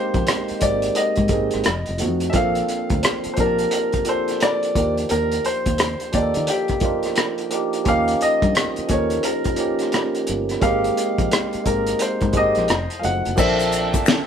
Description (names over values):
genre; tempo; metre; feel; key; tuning
R&B, neo-soul; 87 BPM; 4/4; swing 64% on 16ths; unclear; A4 = 438 Hz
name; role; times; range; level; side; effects
clear grand piano; melody; 0.0-14.3 s; G4 to Gb5; -23 LUFS; left 1 dB; none
barky tine electric piano; accompaniment; 0.0-14.3 s; F3 to A5; -23 LUFS; right 2 dB; overdrive, phaser
fingered electric bass; bass; 0.1-13.9 s; F1 to Eb3; -25 LUFS; equal; none
cloth-damped thuddy drum kit; drums; 0.1-14.3 s; crash cymbal, finger snaps, hi-hat, kick drum, rim click, snare drum; -22 LUFS; equal; none
accordion; sustained chords; 13.4-14.3 s; Bb3 to A4; -29 LUFS; right 3 dB; light tremolo tuning
tube shaker and finger snaps; percussion; 13.4-14.3 s; none; -30 LUFS; left 7 dB; none
room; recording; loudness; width
light reverb; band playing live in one room; -18 LUFS; side -8 dB against mid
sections
0.0-13.4 A section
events
none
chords
0.0 Abmaj9; 1.7 F7b9; 2.3 Bbmaj9; 4.8 Ebmaj9; 7.9 Eb7; 10.6 Abmaj9; 12.7 F7b9; 13.4 Bbmaj9